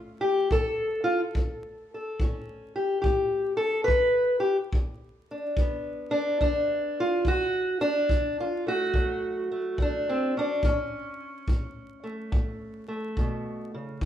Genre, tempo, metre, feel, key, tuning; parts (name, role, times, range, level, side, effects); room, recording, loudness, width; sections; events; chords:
acoustic country blues, solo or duo; 71 BPM; 4/4; swing 66% on 8ths; A4 = 440 Hz
fingerpicked steel-string acoustic guitar; melody; 0.0-14.1 s; D2 to B4; -26 LUFS; equal
kick drum; drums; 0.5-14.1 s; -27 LUFS; equal
moderate large studio reverb, RT60 0.9 s; band playing live in one room, vinyl crackle; -24 LUFS; side -10 dB against mid
0.0-14.0 A section
0.0 A; 3.9 G; 7.3 D; 10.6 A